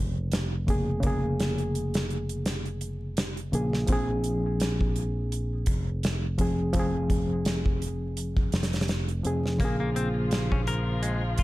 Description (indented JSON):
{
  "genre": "trip hop",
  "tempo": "84 BPM",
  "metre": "4/4",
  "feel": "swing 56% on 16ths",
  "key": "Bb minor",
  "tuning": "A4 = 441 Hz",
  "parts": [
    { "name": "reed electric piano", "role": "accompaniment", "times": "0.0-11.4 s", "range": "Db3 to Ab4", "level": "-30 LUFS", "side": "equal", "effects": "harmonic tremolo, low-pass filter, tape echo" },
    { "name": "fingered electric bass", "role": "bass", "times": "0.0-11.4 s", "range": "F1 to Bb1", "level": "-30 LUFS", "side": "equal", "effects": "tube saturation" },
    { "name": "gated 80s drum kit", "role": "drums", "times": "0.3-11.4 s", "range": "hi-hat, kick drum, snare drum", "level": "-28 LUFS", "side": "equal", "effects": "none" },
    { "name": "dark chamber string section", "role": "sustained chords", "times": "9.6-11.4 s", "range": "F3 to F4", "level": "-36 LUFS", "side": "left 1 dB", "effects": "none" },
    { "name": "clean electric guitar", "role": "arpeggios", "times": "9.6-11.4 s", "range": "Ab3 to Bb4", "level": "-34 LUFS", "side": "left 3 dB", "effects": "tape echo" }
  ],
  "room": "small room ambience",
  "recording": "dark, warm production, vinyl crackle",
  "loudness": "-25 LUFS",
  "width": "side -18 dB against mid",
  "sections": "0.0-11.4 A section",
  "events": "none",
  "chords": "0.0 Bbm7; 3.9 Fm; 9.6 Bbm7"
}